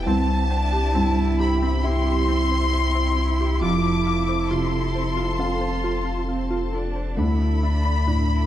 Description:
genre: neoclassical piano and strings.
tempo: 67 BPM.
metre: 4/4.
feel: rubato.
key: C major.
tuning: A4 = 440 Hz.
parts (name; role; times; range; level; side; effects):
dark baby grand piano; accompaniment; 0.0-8.5 s; C2 to F5; -27 LUFS; equal; none.
rich symphonic string section; sustained chords; 0.0-8.5 s; C4 to A5; -34 LUFS; equal; none.
soft dub sub bass; bass; 0.0-8.5 s; F1 to D2; -24 LUFS; left 1 dB; none.
rich chamber violin section; melody; 0.1-8.5 s; A5 to D6; -27 LUFS; left 3 dB; none.
rich cello; second line; 0.1-8.5 s; C4 to F4; -27 LUFS; right 5 dB; none.
glassy wavetable pluck; arpeggios; 0.1-8.2 s; C4 to F5; -31 LUFS; equal; chorus, slapback echo.
room: moderate recital hall reverb, RT60 1.8 s.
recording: dark, warm production.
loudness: -20 LUFS.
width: side -12 dB against mid.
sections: 0.0-8.5 A section.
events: none.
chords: 0.0 C; 3.6 F; 7.2 Dsus2.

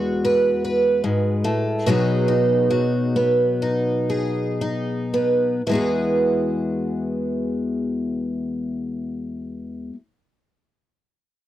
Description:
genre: folk, solo fingerstyle acoustic guitar.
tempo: 54-76 BPM.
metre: 4/4.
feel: rubato.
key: E major.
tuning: A4 = 436 Hz.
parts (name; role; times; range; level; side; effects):
picked twelve-string acoustic guitar; solo; 0.0-10.0 s; E2 to B4; -19 LUFS; equal; none.
room: light reverb.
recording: dry, close 1970s-style studio recording.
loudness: -19 LUFS.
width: side -13 dB against mid.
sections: 0.0-5.7 A section; 5.7-10.0 B section.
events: slowing down 0.0-5.7.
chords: 0.0 Eadd9; 1.9 B6; 5.7 Eadd9.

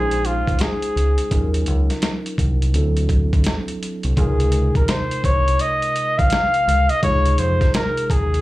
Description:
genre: hip hop, jazz-hop.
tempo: 84 BPM.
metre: 4/4.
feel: swing 63% on 16ths.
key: Db major.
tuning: A4 = 438 Hz.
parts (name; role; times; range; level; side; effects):
dark trumpet; melody; 0.0-8.4 s; F4 to F5; -20 LUFS; equal; plate reverb, slapback echo.
mellow tine electric piano; accompaniment; 0.0-8.4 s; C3 to C5; -26 LUFS; equal; medium stereo tremolo, slapback echo.
deep dub fingered electric bass; bass; 0.0-8.4 s; Bb1 to F2; -19 LUFS; equal; none.
dusty soul sampler-style drum kit; drums; 0.1-8.4 s; hi-hat, kick drum, snare drum; -21 LUFS; equal; none.
room: light reverb.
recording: live gig heard through the venue's PA, club ambience.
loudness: -16 LUFS.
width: side -17 dB against mid.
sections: 0.0-8.4 A section.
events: trumpet solo 0.0-8.4.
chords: 0.0 Bbm11; 1.3 Ebm7; 2.7 D9; 4.2 Dbmaj13.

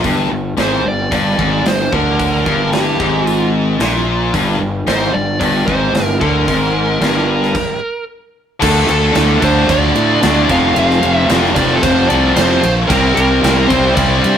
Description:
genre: hard rock.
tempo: 112 BPM.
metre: 4/4.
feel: straight.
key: unclear.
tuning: A4 = 441 Hz.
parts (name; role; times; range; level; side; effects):
high-gain distorted guitar; riff; 0.0-14.4 s; F2 to D4; -21 LUFS; right 5 dB; distortion.
tight distorted guitar; riff; 0.0-14.4 s; F2 to D4; -18 LUFS; left 6 dB; distortion.
fuzz fingered electric bass; bass; 0.0-14.4 s; F1 to A2; -17 LUFS; equal; overdrive.
gated 80s drum kit; drums; 0.0-14.4 s; crash cymbal, hi-hat, kick drum, ride cymbal, snare drum; -19 LUFS; equal; none.
smooth overdriven lead guitar; melody; 0.6-14.4 s; G4 to F5; -18 LUFS; right 2 dB; none.
heavy high-gain guitar; riff; 8.6-14.4 s; C3 to A4; -20 LUFS; right 1 dB; distortion.
room: moderate stone room reverb, RT60 1.1 s.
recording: rough rehearsal-room recording, warm saturation.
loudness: -11 LUFS.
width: side -8 dB against mid.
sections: 0.0-8.6 A section; 8.6-14.4 B section.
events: stop 7.5-8.6.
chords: 0.0 Gm; 8.6 Dm; 10.5 F; 12.9 C.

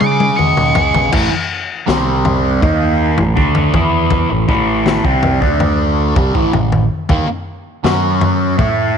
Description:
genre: psychedelic rock.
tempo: 80 BPM.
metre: 4/4.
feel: straight.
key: unclear.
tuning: A4 = 440 Hz.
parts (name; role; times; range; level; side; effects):
octave-fuzz lead guitar; melody; 0.0-1.1 s; C#6 to D6; -18 LUFS; right 1 dB; wah, distortion, slapback echo.
fuzz guitar; riff; 0.0-9.0 s; A2 to D#5; -15 LUFS; right 1 dB; distortion, phaser.
growling fingered electric bass; bass; 0.0-9.0 s; A1 to C#3; -19 LUFS; right 2 dB; overdrive.
crunchy breakbeat drum kit; drums; 0.0-8.8 s; crash cymbal, kick drum, snare drum, toms; -17 LUFS; left 2 dB; none.
room: light reverb, small room ambience.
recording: 1960s-style stereo.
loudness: -12 LUFS.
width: side -7 dB against mid.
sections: 0.0-1.1 A section; 1.1-9.0 B section.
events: drum fill 0.0-1.1; lead electric guitar solo 0.0-1.1.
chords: 0.0 C#madd9; 1.1 A5; 1.9 C5; 2.6 A5; 5.4 D5; 6.2 A5; 7.1 D#5; 7.8 F#5.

